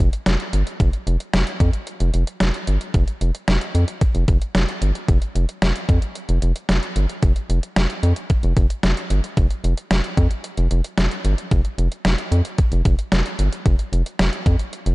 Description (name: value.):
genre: synth-pop.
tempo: 112 BPM.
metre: 4/4.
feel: straight.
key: unclear.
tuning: A4 = 440 Hz.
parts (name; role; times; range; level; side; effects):
round analog bass; bass; 0.0-14.9 s; F1 to F2; -18 LUFS; equal; none.
detuned 8-bit digital drum machine; drums; 0.0-14.9 s; hi-hat, kick drum, snare drum; -20 LUFS; equal; overdrive.
room: little or no reverb.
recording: dark, warm production, nothing above 10.6 kHz.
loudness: -18 LUFS.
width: side -22 dB against mid.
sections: 0.0-14.9 A section.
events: none.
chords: none.